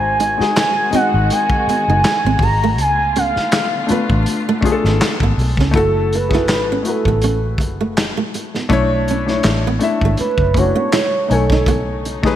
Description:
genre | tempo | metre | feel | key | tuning
R&B, neo-soul | 81 BPM | 4/4 | swing 55% on 16ths | F# minor | A4 = 440 Hz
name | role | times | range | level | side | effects
gliding portamento lead | melody | 0.0-12.0 s | A4 to A#5 | -18 LUFS | right 1 dB | chorus, ping-pong delay
dark grand piano | accompaniment | 0.0-12.4 s | G#3 to G#5 | -20 LUFS | left 4 dB | none
muted studio string section | sustained chords | 0.0-5.7, 11.7-12.4 s | C#3 to F#4 | -26 LUFS | left 1 dB | none
vintage muted fingered electric bass | bass | 0.0-12.4 s | F#1 to C#2 | -19 LUFS | equal | none
flamenco guitar | second line | 0.2-12.4 s | A3 to F#4 | -23 LUFS | right 5 dB | analog chorus
crunchy breakbeat drum kit | drums | 0.2-12.4 s | handclaps, hi-hat, kick drum, snare drum | -20 LUFS | equal | gated reverb
room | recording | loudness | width
moderate lush hall reverb, RT60 2.3 s | bright 1980s-style digital production, vinyl crackle | -14 LUFS | side -11 dB against mid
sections
0.0-5.7 A section; 5.7-12.4 B section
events
soft synth lead solo 5.7-12.4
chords
0.0 G#7; 2.8 C#7b9b13; 5.7 F#m9; 8.7 Bm11; 11.3 B13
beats
0.56 1.30 2.04 | 2.78 3.52 4.26 5.00 | 5.74 6.48 7.22 7.96 | 8.70 9.44 10.19 10.93 | 11.67

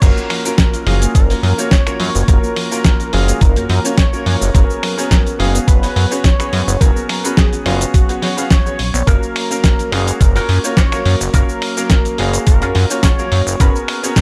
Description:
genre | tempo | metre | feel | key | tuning
nu-disco, nu disco | 106 BPM | 4/4 | swing 53% on 16ths | F# major | A4 = 440 Hz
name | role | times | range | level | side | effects
unison lead | melody | 0.0-14.2 s | E#4 to C#5 | -26 LUFS | equal | dub echo
bright concert grand piano | accompaniment | 0.0-14.2 s | F#3 to E#5 | -24 LUFS | equal | sidechain pumping, delay
soft round pluck | arpeggios | 0.0-9.0 s | E#3 to F#4 | -29 LUFS | equal | chorus, sidechain pumping
chorused synth bass | bass | 0.0-13.7 s | F#1 to F#2 | -18 LUFS | equal | sidechain pumping
dusty soul sampler-style drum kit | drums | 0.0-14.2 s | crash cymbal, finger snaps, hi-hat, shaker, snare drum | -22 LUFS | equal | small room ambience
electronic kick drum | drums | 0.0-14.2 s | none | -15 LUFS | equal | small room ambience
electric guitar with an envelope filter | riff | 9.1-13.9 s | C#4 to C#5 | -28 LUFS | equal | subtle chorus, vintage 12-bit sampler grit
room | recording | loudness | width
digital ambience | none | -14 LUFS | mono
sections
0.0-14.2 A section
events
drop 0.0-14.2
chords
0.0 F#maj7; 4.5 C#7sus4/F#; 9.1 F#maj7; 13.6 C#7sus4/F#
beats
| 0.02 0.58 1.15 1.72 | 2.28 2.85 3.41 3.98 | 4.55 5.11 5.68 6.24 | 6.81 7.38 7.94 8.51 | 9.07 9.64 10.21 10.77 | 11.34 11.90 12.47 13.04 | 13.60 14.17

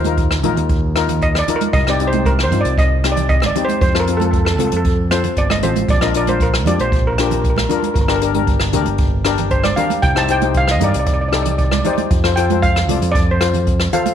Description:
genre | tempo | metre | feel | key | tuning
calypso | 116 BPM | 4/4 | straight | unclear | A4 = 441 Hz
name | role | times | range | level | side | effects
steel pan | accompaniment | 0.0-14.1 s | C4 to D5 | -21 LUFS | left 11 dB | none
modern bright fingered electric bass | bass | 0.0-13.9 s | G1 to G2 | -19 LUFS | right 1 dB | none
jazz brush drum kit | drums | 0.0-14.1 s | hi-hat, kick drum, rim click | -19 LUFS | equal | none
congas | percussion | 0.0-14.1 s | none | -24 LUFS | right 14 dB | none
steel pan | melody | 1.2-14.1 s | A4 to A5 | -20 LUFS | right 2 dB | slapback echo
room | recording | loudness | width
light reverb, studio reverb | 1960s-style stereo with parts hard left and right | -14 LUFS | side -9 dB against mid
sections
0.0-14.1 A section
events
steel pan solo 0.0-14.1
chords
0.0 Ebsus2; 1.7 Cm; 3.8 F; 5.9 Bb; 8.0 Gm; 10.0 Cm; 12.1 F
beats
0.18 0.70 1.22 | 1.74 2.26 2.78 3.29 | 3.81 4.33 4.85 5.37 | 5.89 6.41 6.93 7.45 | 7.96 8.48 9.00 9.52 | 10.04 10.56 11.08 11.60 | 12.12 12.64 13.16 13.68

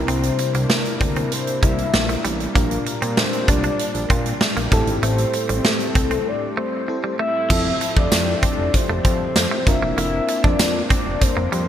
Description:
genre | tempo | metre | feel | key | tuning
1980s-style pop | 97 BPM | 4/4 | straight | F major | A4 = 440 Hz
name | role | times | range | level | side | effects
FM electric piano with soft pad layer | accompaniment | 0.0-11.7 s | A2 to Bb4 | -27 LUFS | equal | chorus
warm analog pad | sustained chords | 0.0-11.7 s | C3 to E5 | -29 LUFS | left 1 dB | chorus
fat analog bass | bass | 0.0-11.7 s | E1 to Bb2 | -24 LUFS | equal | none
soft octave-layered synth lead | melody | 0.1-11.7 s | A4 to E5 | -25 LUFS | left 2 dB | chorus, phaser, digital delay
direct-recorded clean electric guitar | riff | 0.1-11.6 s | F3 to D4 | -28 LUFS | right 4 dB | wide subtle chorus, digital delay
big rock drum kit | drums | 0.1-11.7 s | crash cymbal, hi-hat, kick drum, snare drum, tambourine | -20 LUFS | equal | gated reverb
room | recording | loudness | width
moderate lush hall reverb, RT60 2.4 s | bright 1980s-style digital production | -17 LUFS | side -10 dB against mid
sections
0.0-7.5 A section; 7.5-11.7 B section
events
break 6.3-7.5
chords
0.0 C7; 2.6 Bb6; 4.7 Am7; 7.5 Fmaj7; 9.7 Bbadd9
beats
| 0.08 0.70 1.32 1.94 | 2.55 3.17 3.79 4.41 | 5.03 5.65 6.26 6.88 | 7.50 8.12 8.74 9.36 | 9.98 10.60 11.21

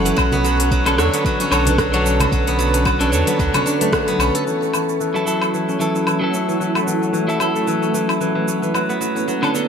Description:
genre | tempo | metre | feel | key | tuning
organic downtempo | 112 BPM | 4/4 | swing 56% on 16ths | F# minor | A4 = 440 Hz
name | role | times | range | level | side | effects
clean electric guitar | accompaniment | 0.0-9.7 s | D3 to C#5 | -22 LUFS | equal | sidechain pumping, ping-pong delay
granular cloud pad | sustained chords | 0.0-9.7 s | D3 to F#6 | -25 LUFS | right 3 dB | built-in reverb, sidechain pumping
steel-string zither | arpeggios | 0.0-9.7 s | E3 to A4 | -20 LUFS | left 1 dB | low-pass filter, ping-pong delay
warm sub bass | bass | 0.0-4.3 s | F#1 to E2 | -20 LUFS | equal | sidechain pumping
organic electronic drum kit | drums | 0.1-9.7 s | hi-hat, rim click, shaker, woodblock | -23 LUFS | equal | none
electronic kick drum | drums | 0.2-4.0 s | none | -23 LUFS | equal | none
congas | percussion | 0.3-4.3 s | none | -28 LUFS | equal | none
room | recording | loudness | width
moderate echo chamber reverb, RT60 1.3 s, digital ambience | none | -16 LUFS | side -7 dB against mid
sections
0.0-4.5 A section; 4.5-9.7 B section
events
band accent 3.9; filter sweep on guzheng 4.5-9.7; filter sweep on ambient pad 4.5-9.7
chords
0.2 Bm9; 4.5 F#m7; 8.7 Bm9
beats
| 0.17 0.71 1.25 1.78 | 2.32 2.85 3.39 3.92 | 4.46 5.00 5.53 6.07 | 6.60 7.14 7.67 8.21 | 8.75 9.28

